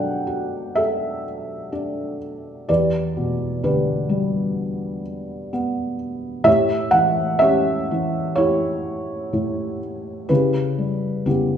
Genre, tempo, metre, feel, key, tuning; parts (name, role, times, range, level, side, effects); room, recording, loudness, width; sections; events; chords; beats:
classical, lyrical solo piano; 63 BPM; 4/4; rubato; A4 = 440 Hz
felt-muted upright piano; solo; 0.0-11.6 s; E2 to G5; -19 LUFS; equal
moderate scoring stage reverb, RT60 1.5 s; recorded in a church or concert hall; -19 LUFS; side -8 dB against mid
0.0-11.6 A section
0.0 Bm7; 2.7 Em7; 6.5 A7; 10.3 C#m7b5
0.77 1.74 | 2.69 3.64 4.58 5.54 | 6.47 7.42 8.38 9.33 | 10.30 11.27